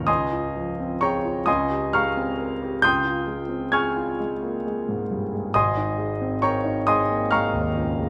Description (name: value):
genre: classical, impressionist solo piano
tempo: 44 BPM (dotted quarters)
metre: 6/8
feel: rubato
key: Ab major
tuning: A4 = 439 Hz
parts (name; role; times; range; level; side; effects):
- warm concert grand piano; solo; 0.0-8.1 s; Ab1 to Ab6; -24 LUFS; equal; none
room: wet recital hall reverb, RT60 1.4 s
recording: none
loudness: -24 LUFS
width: mono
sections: 0.0-8.1 A section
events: none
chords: 0.1 Abmaj9/Db; 5.5 Abadd9